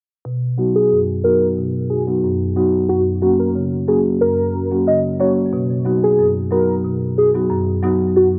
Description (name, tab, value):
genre	dancehall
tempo	91 BPM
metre	4/4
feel	straight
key	unclear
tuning	A4 = 443 Hz
part	marimba with medium mallets	accompaniment	0.3-8.4 s	F#2 to F#4	-20 LUFS	equal	low-pass filter, cassette tape
part	warm velvety synth lead	melody	0.8-8.3 s	F#4 to D#5	-20 LUFS	equal	chorus, low-pass filter, cassette tape
room	light reverb, small room ambience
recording	home recording on cassette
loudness	-17 LUFS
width	mono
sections	0.3-8.4 A section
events	filter sweep 0.3-8.4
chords	0.3 B; 2.9 F#; 5.5 B